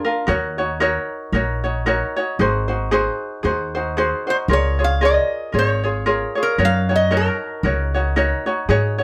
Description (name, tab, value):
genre	Hawaiian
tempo	114 BPM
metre	4/4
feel	swing 57% on 8ths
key	unclear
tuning	A4 = 442 Hz
part	lap resonator guitar	melody	0.0, 4.3-8.4 s	Bb4 to F5	-23 LUFS	equal	none
part	ukulele	accompaniment	0.0-9.0 s	D4 to Db5	-22 LUFS	equal	none
part	upright bass	bass	0.3-9.0 s	Ab1 to Ab2	-24 LUFS	equal	none
room	light reverb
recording	none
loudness	-20 LUFS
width	mono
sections	0.0-9.0 A section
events	none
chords	0.3 Ebm7; 2.4 Ab7; 4.5 Db6; 6.6 Gb6